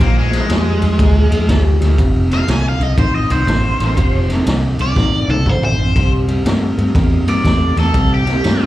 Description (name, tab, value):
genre	electric blues shuffle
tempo	121 BPM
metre	4/4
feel	swing 65% on 8ths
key	F mixolydian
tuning	A4 = 440 Hz
part	cranked stack guitar	melody	0.0-8.7 s	Ab3 to Ab5	-20 LUFS	equal	overdrive, phaser, slapback echo
part	electric guitar through a small old amp	riff	0.0-8.7 s	F2 to Bb3	-20 LUFS	left 1 dB	slapback echo
part	vintage muted fingered electric bass	bass	0.0-8.7 s	F1 to G2	-16 LUFS	equal	none
part	raw garage drum kit	drums	0.0-8.6 s	kick drum, ride cymbal, snare drum, toms	-17 LUFS	equal	none
room	light reverb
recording	live gig heard through the venue's PA, club reverb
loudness	-12 LUFS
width	side -15 dB against mid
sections	0.0-8.7 A section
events	overdriven electric guitar solo 0.0-8.7; drum fill 5.0-6.0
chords	0.0 Bb7; 2.0 F7; 6.0 C7